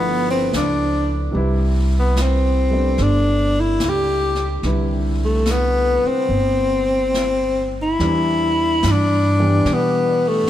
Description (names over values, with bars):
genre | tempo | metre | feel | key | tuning
jazz ballad | 73 BPM | 4/4 | swing 69% on 8ths | C major | A4 = 440 Hz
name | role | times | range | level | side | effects
warm tenor saxophone | melody | 0.0-10.5 s | A3 to G4 | -18 LUFS | left 1 dB | none
warm baby grand piano | accompaniment | 0.0-10.5 s | C3 to B4 | -25 LUFS | equal | none
upright bass | bass | 0.0-10.5 s | G1 to B2 | -20 LUFS | right 1 dB | none
jazz brush drum kit | drums | 0.5-10.5 s | brushed snare drum, hi-hat, snare drum | -31 LUFS | left 2 dB | none
room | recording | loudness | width
moderate plate reverb, RT60 3.2 s | heard from further back in the room | -16 LUFS | side -12 dB against mid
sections
0.0-8.0 A section; 8.0-10.5 B section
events
none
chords
0.0 G13; 1.4 Cmaj9; 8.0 Em7